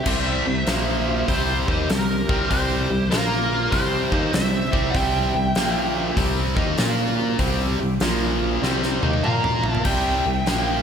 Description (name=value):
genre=blues rock power trio and southern rock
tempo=98 BPM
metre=4/4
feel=swing 65% on 8ths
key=C mixolydian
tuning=A4 = 439 Hz
part: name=smooth overdriven lead guitar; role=melody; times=0.0-10.8 s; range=Bb4 to Bb5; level=-26 LUFS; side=equal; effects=wah, slapback echo
part: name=overdriven tonewheel organ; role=sustained chords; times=0.0-10.7 s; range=F3 to C5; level=-34 LUFS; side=right 3 dB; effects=none
part: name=chorused synth bass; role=bass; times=0.0-10.8 s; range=Bb1 to Bb2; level=-26 LUFS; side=equal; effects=none
part: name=smooth overdriven lead guitar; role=second line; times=0.1-10.8 s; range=F4 to F5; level=-32 LUFS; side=right 3 dB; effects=slapback echo
part: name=distorted electric guitar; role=riff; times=0.1-10.8 s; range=Bb2 to Bb4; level=-23 LUFS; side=equal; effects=overdrive
part: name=huge arena drum kit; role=drums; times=0.1-10.7 s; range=crash cymbal, hi-hat, kick drum, snare drum, toms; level=-25 LUFS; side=equal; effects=none
room=moderate lush hall reverb, RT60 1.6 s, studio reverb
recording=big arena sound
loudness=-19 LUFS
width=side -7 dB against mid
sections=0.1-10.8 A section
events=drum fill 8.6-9.9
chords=0.1 C; 0.7 Bb5; 1.3 C; 3.1 Bb5; 3.7 C; 5.6 Bb5; 6.2 C; 6.8 Bb5; 7.4 C; 8.0 Bb5; 8.6 C; 9.2 Bb5; 9.9 C